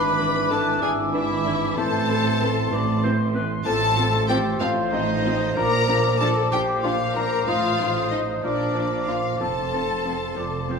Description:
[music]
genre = cinematic, playful, whimsical film cue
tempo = 63 BPM (dotted quarters)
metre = 6/8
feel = straight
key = A minor, Bb major from 3.7 s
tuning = A4 = 440 Hz
[part]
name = large celesta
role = melody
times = 0.0-10.8 s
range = D5 to B5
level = -28 LUFS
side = left 6 dB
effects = none
[part]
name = rich studio violin section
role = melody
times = 0.0-10.8 s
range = D5 to B5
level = -29 LUFS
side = left 4 dB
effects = none
[part]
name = rich studio violin section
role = second line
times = 0.0-10.8 s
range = D4 to B4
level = -30 LUFS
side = left 2 dB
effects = none
[part]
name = silver concert flute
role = second line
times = 0.0-10.8 s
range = C6 to Eb6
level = -32 LUFS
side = left 2 dB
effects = none
[part]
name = warm clarinet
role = second line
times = 0.0-10.8 s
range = D4 to B4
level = -31 LUFS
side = left 1 dB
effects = none
[part]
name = warm oboe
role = second line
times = 0.0-10.8 s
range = A4 to E5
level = -32 LUFS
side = equal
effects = none
[part]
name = warm bassoon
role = accompaniment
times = 0.0-10.8 s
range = E3 to F3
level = -30 LUFS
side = right 3 dB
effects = none
[part]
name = mellow French horn section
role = sustained chords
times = 0.0-10.8 s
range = E3 to Eb4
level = -32 LUFS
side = left 4 dB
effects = none
[part]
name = rich studio cello section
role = bass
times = 0.0-10.8 s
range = F2 to Bb2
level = -30 LUFS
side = right 3 dB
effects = none
[part]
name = rich studio double bass section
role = bass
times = 0.0-10.8 s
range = F1 to Bb1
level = -29 LUFS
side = right 4 dB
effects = none
[part]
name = rich studio viola section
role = accompaniment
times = 0.2-10.8 s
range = E3 to Eb4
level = -31 LUFS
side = right 2 dB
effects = none
[sound]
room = wet scoring stage reverb, RT60 1.6 s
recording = minimal, uncompressed stereo recording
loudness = -20 LUFS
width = side -5 dB against mid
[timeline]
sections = 0.0-10.8 A section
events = none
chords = 0.0 E7/G#; 1.8 Am; 3.7 F/A; 5.6 Bb; 7.5 F7/A; 8.4 Bb; 9.4 F

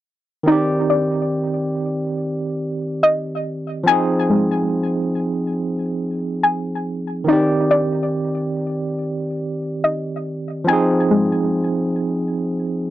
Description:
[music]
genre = hip hop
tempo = 141 BPM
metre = 4/4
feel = half-time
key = C minor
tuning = A4 = 439 Hz
[part]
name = barky tine electric piano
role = accompaniment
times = 0.4-12.9 s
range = Eb3 to D5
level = -20 LUFS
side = right 1 dB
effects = medium stereo tremolo
[part]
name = soft round pluck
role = arpeggios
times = 0.5-12.9 s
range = Ab3 to Ab5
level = -18 LUFS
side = left 2 dB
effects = chorus, tape echo
[sound]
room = light reverb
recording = dry, gritty hardware recording, transformer saturation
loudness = -18 LUFS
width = side -14 dB against mid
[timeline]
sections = 0.5-12.9 A section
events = none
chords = 0.5 Cmadd9; 3.9 Fm7; 7.3 Cmadd9; 10.7 Fm7

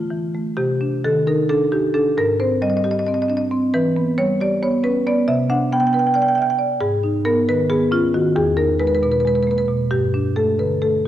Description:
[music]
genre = classical, contemporary piece for solo marimba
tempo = 270 BPM (eighths)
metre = 7/8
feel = rubato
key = unclear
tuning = A4 = 436 Hz
[part]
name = marimba with medium mallets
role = solo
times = 0.0-11.1 s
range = E2 to G5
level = -16 LUFS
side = equal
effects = none
[sound]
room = wet scoring stage reverb, RT60 1.8 s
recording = dark, warm production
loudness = -16 LUFS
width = side -12 dB against mid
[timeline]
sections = 0.6-11.1 A section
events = none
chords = 0.0 Dsus2; 0.6 Cmadd9; 2.2 Abmaj7; 3.7 Em; 5.3 Cmaj9; 6.8 G#m; 8.3 Emaj7; 9.9 Gadd9

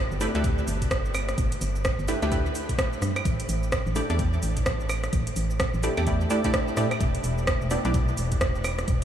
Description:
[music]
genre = UK garage, two-step garage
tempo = 128 BPM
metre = 4/4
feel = swing 60% on 16ths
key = unclear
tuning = A4 = 440 Hz
[part]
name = organ-like FM bass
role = bass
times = 0.0-9.0 s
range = E1 to A2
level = -27 LUFS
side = equal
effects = sidechain pumping
[part]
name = garage drum kit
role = drums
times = 0.1-9.0 s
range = claves, hi-hat, rim click, shaker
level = -30 LUFS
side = right 1 dB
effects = small room ambience
[part]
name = punchy chord stab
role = stabs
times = 0.2-7.9 s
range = A3 to D5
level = -30 LUFS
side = equal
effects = chorus, tape echo
[part]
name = electronic kick drum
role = drums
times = 0.4-9.0 s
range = none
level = -27 LUFS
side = equal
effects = small room ambience
[sound]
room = moderate huge ambient reverb, RT60 8.6 s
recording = dreamy mix soaked in reverb, studio ambience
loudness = -23 LUFS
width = side -10 dB against mid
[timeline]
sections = 0.0-9.0 A section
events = none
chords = 0.0 G69; 3.3 A7sus4; 7.0 Em7

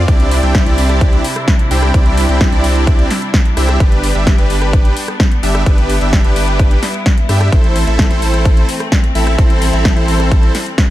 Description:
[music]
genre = EDM, festival progressive house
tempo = 129 BPM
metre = 4/4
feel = straight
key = A minor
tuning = A4 = 441 Hz
[part]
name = rich symphonic string section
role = sustained chords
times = 0.0-10.9 s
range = C3 to E4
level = -22 LUFS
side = left 1 dB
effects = sidechain pumping
[part]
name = supersaw chords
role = riff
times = 0.0-10.5 s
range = C4 to G5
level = -18 LUFS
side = right 1 dB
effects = sidechain pumping, tape echo
[part]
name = saturated sub bass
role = bass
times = 0.0-10.5 s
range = G1 to G2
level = -15 LUFS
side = equal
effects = sidechain pumping
[part]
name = big-room dance drum kit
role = drums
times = 0.1-10.9 s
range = hi-hat, rim click, snare drum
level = -20 LUFS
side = equal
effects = small room reverb
[part]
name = electronic kick drum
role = drums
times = 0.1-10.9 s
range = none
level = -12 LUFS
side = equal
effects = small room reverb
[sound]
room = digital ambience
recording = dark, warm production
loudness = -10 LUFS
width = side -15 dB against mid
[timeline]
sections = 0.0-10.9 A section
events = none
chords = 0.1 Cadd9; 3.8 G; 7.5 Am

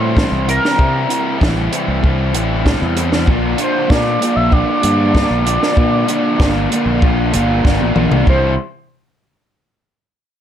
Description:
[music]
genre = indie rock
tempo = 96 BPM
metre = 4/4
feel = straight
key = C mixolydian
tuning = A4 = 445 Hz
[part]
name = sync lead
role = melody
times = 0.0-8.6 s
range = Bb4 to E5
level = -19 LUFS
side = equal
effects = chorus, slapback echo
[part]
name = crunchy overdriven guitar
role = riff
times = 0.0-8.5 s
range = Bb2 to F4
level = -17 LUFS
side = equal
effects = none
[part]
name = growling fingered electric bass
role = bass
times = 0.0-8.6 s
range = G1 to C3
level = -18 LUFS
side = equal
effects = overdrive
[part]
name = compact cocktail drum kit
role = drums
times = 0.2-8.4 s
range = hi-hat, kick drum, snare drum, toms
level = -16 LUFS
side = equal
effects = none
[sound]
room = light reverb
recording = dark, warm production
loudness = -12 LUFS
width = side -10 dB against mid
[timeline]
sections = 0.0-8.3 A section; 8.3-10.4 B section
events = drum fill 7.6-8.3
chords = 0.0 C; 3.3 Bb; 8.3 C

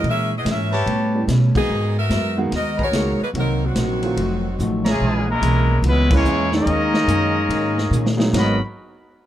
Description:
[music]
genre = jazz, big band swing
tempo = 145 BPM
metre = 4/4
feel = swing 65% on 8ths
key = G# minor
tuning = A4 = 440 Hz
[part]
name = clear saxophone section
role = melody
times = 0.0-4.9 s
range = Eb3 to E5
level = -24 LUFS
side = left 1 dB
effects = none
[part]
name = vintage hollow-body jazz guitar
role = accompaniment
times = 0.0-8.6 s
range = A2 to A#4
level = -26 LUFS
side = left 1 dB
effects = none
[part]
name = warm grand piano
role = accompaniment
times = 0.0-8.6 s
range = D#3 to G#4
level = -24 LUFS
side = right 2 dB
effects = none
[part]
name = upright bass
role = bass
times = 0.0-8.6 s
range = F1 to B2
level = -21 LUFS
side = equal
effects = none
[part]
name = vintage drum kit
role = drums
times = 0.0-8.5 s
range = crash cymbal, hi-hat, kick drum, ride cymbal, snare drum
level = -25 LUFS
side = equal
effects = none
[part]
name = mellow trumpet section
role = stabs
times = 0.7-5.4 s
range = G4 to A#5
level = -26 LUFS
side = equal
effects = none
[part]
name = brilliant trombone section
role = second line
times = 3.6-8.6 s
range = G#2 to D#4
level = -24 LUFS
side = equal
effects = none
[part]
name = clear trumpet section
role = melody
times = 4.9-8.6 s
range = G#3 to B5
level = -22 LUFS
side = left 2 dB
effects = none
[sound]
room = light reverb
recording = dark, warm production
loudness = -17 LUFS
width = side -12 dB against mid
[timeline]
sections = 0.0-5.0 A section; 5.0-8.3 B section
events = band accent 1.5, 4.8, 6.0; drum fill 4.6-5.0, 7.9-8.3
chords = 0.0 A#m7b5; 0.9 A9; 1.7 G#m9; 3.4 Cm7b5; 4.2 F7b9; 5.0 A#m7b5; 6.7 D#7sus4; 8.3 G#m9

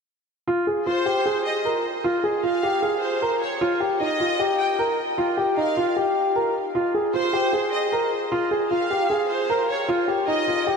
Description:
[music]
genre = hip hop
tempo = 153 BPM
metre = 4/4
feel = half-time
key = F minor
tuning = A4 = 439 Hz
[part]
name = dark baby grand piano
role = melody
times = 0.5-10.8 s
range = Eb4 to Bb4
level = -21 LUFS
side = equal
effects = low-pass filter, diffuse ambient delay
[part]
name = dark symphonic violin section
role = second line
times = 0.9-10.8 s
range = C5 to G5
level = -27 LUFS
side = right 1 dB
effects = diffuse ambient delay
[sound]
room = wet huge ambient reverb, RT60 6.6 s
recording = dreamy mix soaked in reverb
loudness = -20 LUFS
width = side -5 dB against mid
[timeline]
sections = 0.5-10.8 A section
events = none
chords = none

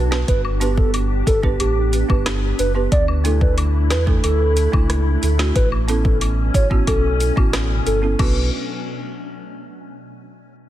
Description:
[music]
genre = dancehall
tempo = 91 BPM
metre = 4/4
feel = straight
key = B minor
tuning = A4 = 440 Hz
[part]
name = folk marimba with medium mallets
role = accompaniment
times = 0.0-8.5 s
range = A3 to B4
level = -26 LUFS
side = right 5 dB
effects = none
[part]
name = glassy FM pad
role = sustained chords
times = 0.0-8.5 s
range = B2 to G4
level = -28 LUFS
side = left 2 dB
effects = ensemble chorus, built-in reverb, sidechain pumping
[part]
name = sub bass with octave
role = bass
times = 0.0-8.5 s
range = F#1 to E2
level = -20 LUFS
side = equal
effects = none
[part]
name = afro-pop drum kit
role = drums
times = 0.1-8.3 s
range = crash cymbal, hi-hat, kick drum, rim click, snare drum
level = -20 LUFS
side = equal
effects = none
[part]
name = hollow clarinet-like synth lead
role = melody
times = 0.3-8.5 s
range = G4 to D5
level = -24 LUFS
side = right 1 dB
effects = chorus, ping-pong delay
[part]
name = woodblock and cabasa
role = percussion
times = 0.4-8.5 s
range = none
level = -33 LUFS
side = left 6 dB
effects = none
[sound]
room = little or no reverb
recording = dense, heavily limited modern master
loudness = -16 LUFS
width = side -13 dB against mid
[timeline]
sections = 0.0-8.2 A section; 8.2-10.7 B section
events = none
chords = 0.3 G; 2.9 Dsus2; 5.6 Aadd9; 8.2 Bm

